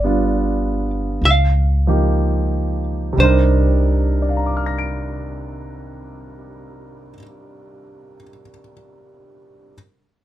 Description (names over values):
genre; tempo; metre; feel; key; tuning
jazz ballad; 58-69 BPM; 4/4; swing 69% on 8ths; C minor; A4 = 440 Hz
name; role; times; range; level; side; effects
archtop guitar, miked and amplified; melody; 0.0-7.1 s; C5 to F5; -20 LUFS; right 2 dB; none
warm concert grand piano; accompaniment; 0.0-9.8 s; C3 to D7; -22 LUFS; right 2 dB; none
upright bass; bass; 0.0-7.1 s; G1 to Db2; -18 LUFS; equal; none
room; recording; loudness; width
little or no reverb; close, detailed microphones; -15 LUFS; side -13 dB against mid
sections
0.0-3.2 A section; 3.2-7.2 B section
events
slowing down 0.0-3.2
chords
0.0 G7; 1.2 Db; 3.2 Cm7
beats
0.31 1.21 2.16 | 3.17 4.19 5.20 6.21